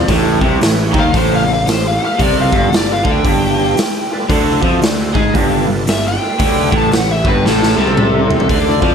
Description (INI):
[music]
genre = blues rock power trio and southern rock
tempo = 114 BPM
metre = 4/4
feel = swing 62% on 8ths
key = unclear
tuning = A4 = 440 Hz
[part]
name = biting lead guitar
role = melody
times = 0.0-8.9 s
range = A4 to A5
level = -19 LUFS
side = left 2 dB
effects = wah, overdrive
[part]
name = overdriven tonewheel organ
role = sustained chords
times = 0.0-8.9 s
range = E4 to F5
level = -25 LUFS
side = right 4 dB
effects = slow rotary speaker, chorus vibrato
[part]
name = raw garage guitar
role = riff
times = 0.0-8.9 s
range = G2 to G#3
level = -16 LUFS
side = right 2 dB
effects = overdrive
[part]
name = fuzz picked electric bass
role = bass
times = 0.0-8.9 s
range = G1 to G#2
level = -18 LUFS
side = equal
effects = overdrive
[part]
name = raw garage drum kit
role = drums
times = 0.1-8.9 s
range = hi-hat, kick drum, snare drum, splash cymbal, toms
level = -16 LUFS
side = equal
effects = none
[sound]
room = light reverb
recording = none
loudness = -11 LUFS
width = side -7 dB against mid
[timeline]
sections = 0.0-8.5 A section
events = lead electric guitar solo 0.0-8.5; drum fill 7.4-8.5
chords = 0.1 A7; 2.2 G7; 4.3 D7; 5.3 G7; 6.4 A7